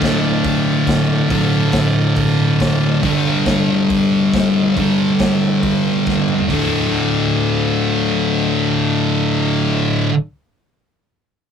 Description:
garage rock duo or trio; 138 BPM; 4/4; straight; D minor; A4 = 439 Hz
combo organ; sustained chords; 0.0-3.0 s; F4 to D5; -28 LUFS; right 1 dB
thick fuzz guitar; riff; 0.0-10.1 s; D2 to G3; -14 LUFS; equal; distortion
raw garage drum kit; drums; 0.0-6.6 s; hi-hat, kick drum, snare drum, toms; -23 LUFS; equal
wet booth ambience, RT60 0.2 s; rough rehearsal-room recording, tube saturation; -14 LUFS; side -7 dB against mid
0.0-6.5 A section; 6.5-10.0 B section
drum fill 6.1-6.5
0.0 Dm; 3.0 G5; 6.5 D5

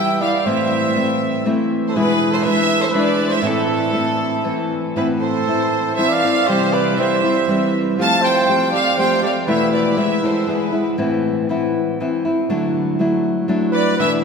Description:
mexican folk, mariachi; 120 BPM; 3/4; rubato; A minor; A4 = 440 Hz
clear studio violin section; melody; 0.0-10.9, 13.7-14.1 s; A4 to A5; -21 LUFS; equal
dark trumpet; second line; 0.0-10.9, 13.7-14.1 s; E4 to F5; -22 LUFS; right 3 dB
nylon-string guitar; accompaniment; 0.0-14.2 s; E2 to G4; -18 LUFS; left 1 dB
wet cathedral reverb, RT60 4.7 s; recorded in a church or concert hall; -15 LUFS; side -5 dB against mid
0.0-5.0 A section; 5.0-14.2 B section
0.5 Am; 2.0 E7; 3.4 Am; 5.0 Amadd9; 6.5 C; 8.0 Fadd9; 9.5 Esus4; 10.0 E; 11.0 Amadd9; 12.5 Dadd9

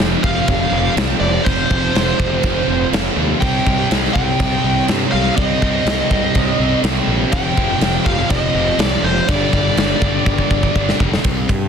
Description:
hard rock; 123 BPM; 4/4; straight; A4 = 436 Hz
phased analog pad; sustained chords; 0.0-11.2 s; F3 to Eb5; -28 LUFS; equal
distorted electric guitar; riff; 0.0-11.2 s; F2 to C4; -22 LUFS; right 1 dB; overdrive
sludgy distorted guitar; riff; 0.0-11.7 s; F2 to C4; -22 LUFS; left 1 dB; overdrive
fuzz fingered electric bass; bass; 0.0-11.7 s; F1 to G2; -21 LUFS; equal; overdrive
big rock drum kit; drums; 0.0-11.6 s; crash cymbal, kick drum, ride cymbal, snare drum; -18 LUFS; equal
biting lead guitar; melody; 0.2-11.0 s; C5 to G5; -21 LUFS; equal; overdrive
light reverb; dense, heavily limited modern master; -14 LUFS; side -7 dB against mid
0.0-11.2 A section
drum fill 10.3-11.2
0.0 F5; 3.4 Cm; 7.3 F5; 9.3 G5

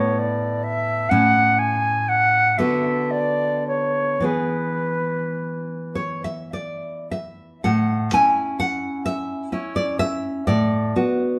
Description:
romantic duo for flute and classical guitar; 34-45 BPM (dotted quarters); 6/8; rubato; A major; A4 = 440 Hz
concert flute; melody; 0.0-6.0 s; B4 to G#5; -23 LUFS; equal
nylon-string guitar; accompaniment; 0.0-11.4 s; A2 to G#5; -24 LUFS; equal
moderate studio reverb, RT60 0.9 s; band playing live in one room, lossy compression artefacts; -21 LUFS; mono
0.0-7.7 A section; 7.7-11.4 A section
0.0 E5/A; 1.1 A; 2.6 Bm/D; 4.3 E; 7.7 A; 10.5 Bm7/A

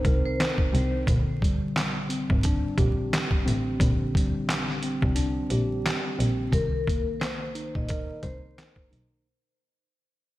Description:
hip hop, boom-bap hip-hop; 88 BPM; 4/4; swing 58% on 16ths; C minor; A4 = 435 Hz
vibraphone with hard mallets; melody; 0.0-0.6, 6.5-9.2 s; Bb4 to Eb5; -33 LUFS; left 2 dB; high-pass filter, low-pass filter, tape echo
mellow tine electric piano; accompaniment; 0.0-9.3 s; C3 to C5; -30 LUFS; equal; slow stereo tremolo, cassette tape, high-pass filter, low-pass filter
warm double bass; bass; 0.0-9.2 s; Ab1 to C2; -28 LUFS; equal
trip hop sampler-style drum kit; drums; 0.0-9.1 s; handclaps, hi-hat, kick drum, snare drum; -26 LUFS; equal
light reverb, digital ambience; vinyl crackle; -23 LUFS; side -16 dB against mid
0.0-6.5 A section; 6.5-9.3 B section
kick muted 5.2-6.5; fade-out 6.5-9.3
0.0 Cm7; 1.1 Bb69; 6.5 Cm7

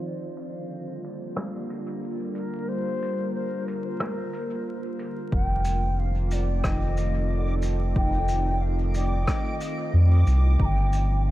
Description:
ambient dub; 91 BPM; 4/4; swing 58% on 16ths; A4 = 440 Hz
warbly tape-like pad; sustained chords; 0.0-11.3 s; D3 to C5; -32 LUFS; equal; chorus, built-in reverb
shaker and rim click; drums; 0.4-11.1 s; -35 LUFS; equal; low-pass filter on snare, low-pass filter on perc, low-pass filter on room, dub echo
mellow hollow wooden flute; melody; 2.3-11.3 s; G4 to Bb5; -33 LUFS; left 1 dB; dub echo
round analog bass; bass; 5.3-11.3 s; F1 to F2; -22 LUFS; equal; tube saturation
electronic kick drum; drums; 5.3-10.8 s; -27 LUFS; equal
backwards swelling texture; texture; 6.2-11.3 s; Eb4 to D6; -38 LUFS; right 1 dB; built-in reverb
small room ambience; vinyl crackle, low-pass filter; -23 LUFS; side -15 dB against mid
0.0-5.3 A section; 5.3-11.3 B section
filter sweep 0.0-5.3
0.0 Gm7; 5.3 F7; 10.6 Gm7

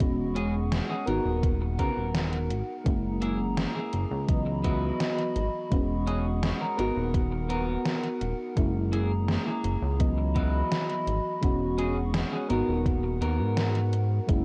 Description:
vaporwave; 84 BPM; 4/4; straight; G# minor; A4 = 440 Hz
mellow FM electric piano; accompaniment; 0.0-14.4 s; E3 to D#5; -34 LUFS; equal; phaser, lush chorus, analog delay
warbly tape-like pad; sustained chords; 0.0-14.4 s; F#4 to E6; -38 LUFS; equal; chorus, built-in reverb
chorused synth bass; bass; 0.0-14.4 s; D#1 to G#2; -31 LUFS; equal; tube saturation
electronic kick drum; drums; 0.0-14.4 s; -29 LUFS; equal; overdrive, vintage 12-bit sampler grit
gated 80s digital drum machine; drums; 0.0-14.4 s; congas, hi-hat, snare drum; -34 LUFS; equal; gated reverb, gated reverb snare, overdrive, vintage 12-bit sampler grit
clean electric guitar; riff; 0.4-13.9 s; A#3 to A#4; -37 LUFS; equal; lush chorus, analog delay
digital ambience; cassette tape; -28 LUFS; mono
0.0-14.3 A section
0.0 E69; 1.1 G#m9; 2.9 F#9; 4.3 C#m11; 5.7 E69; 6.8 G#m9 (rootless); 8.6 F#9; 10.0 C#m11; 11.4 E69; 12.5 G#m9

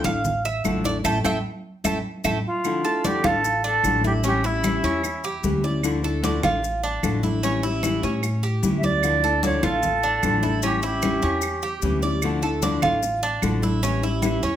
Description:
latin, Cuban son and guajira; 150 BPM; 4/4; straight; D harmonic minor; A4 = 438 Hz
nylon-string guitar; accompaniment; 0.0-14.6 s; D3 to E4; -26 LUFS; left 5 dB
Cuban tres; arpeggios; 0.0-14.6 s; C#4 to A5; -26 LUFS; right 3 dB
upright bass; bass; 0.0-14.6 s; A1 to A2; -27 LUFS; equal
congas; percussion; 0.0-14.6 s; -29 LUFS; right 1 dB
claves; percussion; 0.1-14.4 s; -34 LUFS; right 11 dB
maracas; percussion; 0.1-14.6 s; -36 LUFS; left 11 dB
silver concert flute; melody; 2.5-5.6, 8.8-12.0 s; E4 to E5; -24 LUFS; right 2 dB
moderate large studio reverb, RT60 0.8 s; -20 LUFS; side -10 dB against mid
0.0-2.6 A section; 2.6-14.6 B section
Cuban tres solo 0.0-2.6; band accent 1.0-2.6
0.0 Dmadd9; 1.0 A7; 2.6 Dmadd9; 4.2 A7; 5.8 Dmadd9; 7.4 A7; 9.0 Dmadd9; 10.6 A7; 12.2 Dmadd9; 13.8 A7

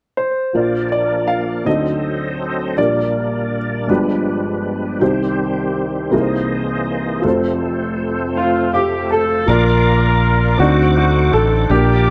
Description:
gospel; 54 BPM (dotted quarters); 6/8; straight; Bb major; A4 = 440 Hz
warm baby grand piano; melody; 0.2-3.6, 8.4-12.1 s; F4 to F5; -22 LUFS; equal; slapback echo
warm upright piano; accompaniment; 0.5-12.1 s; F1 to A5; -21 LUFS; equal
bright tonewheel organ; sustained chords; 0.5-12.1 s; Bb2 to D6; -24 LUFS; equal; slow rotary speaker, chorus vibrato
clear horn section; melody; 8.4-12.1 s; A3 to Bb4; -22 LUFS; equal
fretless electric bass; bass; 9.5-12.1 s; A1 to D2; -17 LUFS; equal; ensemble chorus
small room reverb; dry, close 1970s-style studio recording; -17 LUFS; mono
0.5-9.5 A section; 9.5-12.1 B section
upright piano fill 8.4-9.5
0.0 N.C.; 0.5 Bb; 1.7 D7b9; 2.8 Gm/Bb; 3.9 G7b9; 5.0 Cm; 6.1 C7alt; 7.2 F; 9.5 Bb; 10.6 D7b9

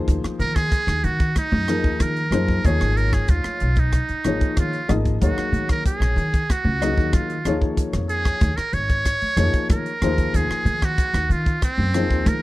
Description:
electric jazz fusion; 94 BPM; 4/4; straight; A4 = 440 Hz
dark baby grand piano; accompaniment; 0.0-12.4 s; F3 to Eb5; -26 LUFS; left 4 dB
upright bass; bass; 0.1-12.4 s; Ab1 to Eb3; -22 LUFS; equal
crisp fusion drum kit; drums; 0.1-12.4 s; hi-hat, kick drum, rim click; -22 LUFS; equal
trumpet with metal mute; melody; 0.4-12.4 s; C4 to Db5; -24 LUFS; right 2 dB
studio ambience; dry, close 1970s-style studio recording, lossy compression artefacts; -18 LUFS; side -18 dB against mid
0.0-12.4 A section
0.0 Ab13/Eb; 2.6 Db9; 5.2 Ebm7; 7.5 Bbm7/Eb; 10.0 Ab13/Eb

